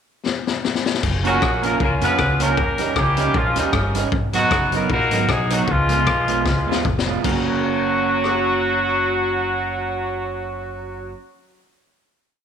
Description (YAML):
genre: ska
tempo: 154 BPM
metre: 4/4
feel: swing 55% on 8ths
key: F# major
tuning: A4 = 440 Hz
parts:
  - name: raw garage drum kit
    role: drums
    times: 0.3-8.3 s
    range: crash cymbal, hi-hat, kick drum, rim click, snare drum, toms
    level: -23 LUFS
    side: left 4 dB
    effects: none
  - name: upright bass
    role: bass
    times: 1.0-11.1 s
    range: E#1 to E#2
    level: -25 LUFS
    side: equal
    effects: none
  - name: electric guitar through a small old amp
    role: accompaniment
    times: 1.2-11.2 s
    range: F#3 to E#4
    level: -25 LUFS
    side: right 7 dB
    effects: none
  - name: clear horn section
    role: melody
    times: 1.3-11.1 s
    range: D#3 to B4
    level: -20 LUFS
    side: equal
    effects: none
room: moderate echo chamber reverb, RT60 1.4 s, small room ambience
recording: 1960s-style stereo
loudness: -17 LUFS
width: side -8 dB against mid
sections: 0.0-1.0 pickup bar; 1.0-7.2 head; 7.2-10.4 final chord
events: drum fill 0.3-1.0, 6.5-7.2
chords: 0.0 N.C.; 1.0 F#maj7; 2.6 D#7; 4.1 G#m7; 5.7 C#7; 7.2 F#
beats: 0.26 0.65 | 1.03 1.42 1.80 2.19 | 2.58 2.96 3.35 3.74 | 4.12 4.51 4.90 5.29 | 5.68 6.07 6.46 6.85 | 7.24 7.63 8.02 8.41 | 8.80 9.19 9.58 9.97